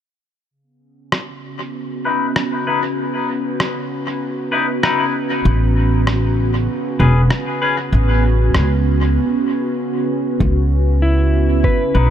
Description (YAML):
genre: ambient dub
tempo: 97 BPM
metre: 4/4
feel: swing 54% on 16ths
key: C# minor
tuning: A4 = 440 Hz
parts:
  - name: warbly tape-like pad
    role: sustained chords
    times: 1.2-12.1 s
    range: C#3 to B4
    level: -21 LUFS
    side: right 2 dB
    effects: chorus, built-in reverb, phaser
  - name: electronic rim click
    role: drums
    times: 1.1-8.7 s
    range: none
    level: -25 LUFS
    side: equal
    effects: studio reverb, dub echo
  - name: clean electric guitar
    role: stabs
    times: 2.1-7.8, 11.9-12.1 s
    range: C#4 to B4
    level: -22 LUFS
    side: left 4 dB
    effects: low-pass filter, dub echo
  - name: upright bass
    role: bass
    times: 5.5-12.1 s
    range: E1 to C#2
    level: -14 LUFS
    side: equal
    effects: none
  - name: electronic kick drum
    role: drums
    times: 10.4-11.8 s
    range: none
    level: -18 LUFS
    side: equal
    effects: studio reverb
  - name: clean lap steel guitar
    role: melody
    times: 11.0-12.1 s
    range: E4 to B4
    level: -19 LUFS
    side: equal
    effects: dub echo
room: light reverb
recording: none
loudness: -15 LUFS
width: side -10 dB against mid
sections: 0.5-10.4 A section; 10.4-12.1 B section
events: filter sweep on clean electric guitar 0.5-10.4; break 9.2-10.4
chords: 0.5 C#m7; 5.5 A; 10.4 C#m7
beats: | 0.51 1.12 1.74 2.36 | 2.98 3.60 4.22 4.83 | 5.45 6.07 6.69 7.31 | 7.93 8.55 9.16 9.78 | 10.40 11.02 11.64